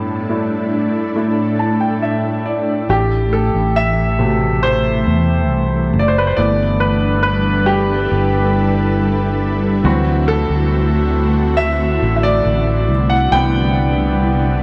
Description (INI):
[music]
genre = pop ballad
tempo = 69 BPM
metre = 4/4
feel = straight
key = unclear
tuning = A4 = 441 Hz
[part]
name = clear concert grand piano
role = accompaniment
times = 0.0-14.6 s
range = A2 to A5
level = -20 LUFS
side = equal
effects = none
[part]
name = ethereal airy pad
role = sustained chords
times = 0.0-14.6 s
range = A2 to B4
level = -22 LUFS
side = equal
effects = ensemble chorus, built-in reverb
[part]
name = fretless electric bass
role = bass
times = 2.9-14.6 s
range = F#1 to E2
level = -20 LUFS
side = equal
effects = analog chorus
[sound]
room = moderate echo chamber reverb, RT60 1.8 s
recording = none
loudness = -16 LUFS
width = mono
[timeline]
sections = 0.0-2.9 A section; 2.9-14.6 B section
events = grand piano fill 1.2-2.9; grand piano solo 2.9-14.6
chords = 0.0 Dsus2/A; 2.9 Amadd9; 6.4 G6; 9.9 D7; 12.9 Cmaj7